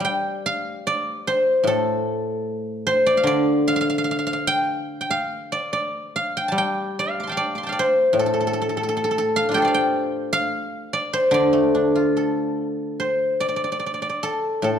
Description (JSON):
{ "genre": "chinese traditional, Chinese solo plucked strings", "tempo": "74 BPM", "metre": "2/4", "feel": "rubato", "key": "D yu mode", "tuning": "A4 = 440 Hz", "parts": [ { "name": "guzheng", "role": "solo", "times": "0.0-14.8 s", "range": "A2 to D6", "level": "-20 LUFS", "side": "equal", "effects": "none" } ], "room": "moderate recital hall reverb, RT60 1.4 s", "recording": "dark, warm production", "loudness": "-20 LUFS", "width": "side -8 dB against mid", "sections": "0.0-13.0 A section; 13.0-14.8 B section", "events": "none", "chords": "none" }